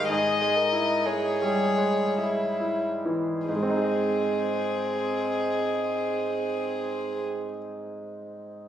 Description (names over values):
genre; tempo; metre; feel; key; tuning
classical, slow romantic movement for piano quartet; 43-67 BPM; 3/4; rubato; Ab major; A4 = 440 Hz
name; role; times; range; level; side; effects
warm violin; melody; 0.0-7.2 s; Ab4 to Eb5; -28 LUFS; left 2 dB; none
warm violin; second line; 0.0-7.2 s; C4 to Bb4; -31 LUFS; left 1 dB; none
bright grand piano; accompaniment; 0.0-8.7 s; Ab2 to Eb5; -28 LUFS; right 2 dB; none
room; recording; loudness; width
moderate scoring stage reverb, RT60 1.7 s; recorded on a phone in the room, studio reverb, compression; -24 LUFS; side -10 dB against mid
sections
0.0-3.5 A section; 3.5-7.2 B section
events
slowing down 0.0-3.5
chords
0.1 Dbm/Ab; 3.5 Ab